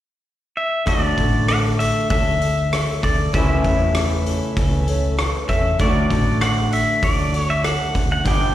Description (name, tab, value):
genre	folk rock and heartland rock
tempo	98 BPM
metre	4/4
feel	straight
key	D major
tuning	A4 = 440 Hz
part	pedal steel guitar	melody	0.6-8.5 s	D5 to G5	-22 LUFS	equal	slapback echo
part	picked old ladder-braced acoustic guitar	accompaniment	0.9-8.5 s	G2 to A4	-28 LUFS	left 2 dB	slapback echo
part	electric guitar through a small old amp	riff	0.9-8.5 s	G2 to G4	-24 LUFS	left 1 dB	spring reverb, slapback echo
part	hollow-body short-scale fingered electric bass	bass	0.9-8.5 s	G1 to E2	-22 LUFS	equal	none
part	loose indie drum kit	drums	0.9-8.4 s	hi-hat, kick drum, rim click	-22 LUFS	equal	none
room	light reverb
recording	live gig heard through the venue's PA, recital hall reverb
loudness	-17 LUFS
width	side -12 dB against mid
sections	0.9-8.5 A section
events	none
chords	0.0 N.C.; 0.9 D; 3.3 A/C#; 5.8 D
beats	0.25 | 0.87 1.49 2.10 2.72 | 3.34 3.95 4.57 5.18 | 5.80 6.41 7.03 7.64 | 8.26